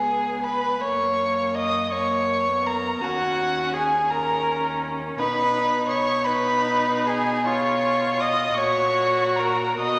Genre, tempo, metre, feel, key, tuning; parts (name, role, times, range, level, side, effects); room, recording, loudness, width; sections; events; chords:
classical, slow romantic movement for string quartet; 46-57 BPM (dotted quarters); 6/8; rubato; F# major; A4 = 439 Hz
warm violin; melody; 0.0-10.0 s; F#5 to D#6; -26 LUFS; equal
warm violin; second line; 0.0-10.0 s; F#4 to D#5; -28 LUFS; equal
rich viola; accompaniment; 0.0-10.0 s; A#3 to F#4; -31 LUFS; equal
rich cello; bass; 0.0-10.0 s; C#2 to B2; -35 LUFS; equal
wet scoring stage reverb, RT60 1.8 s; -23 LUFS; mono
0.0-10.0 A section
0.0 C#7(no3); 0.8 F#; 3.0 D#m7; 5.2 B; 7.5 C#7/B; 8.6 F#/A#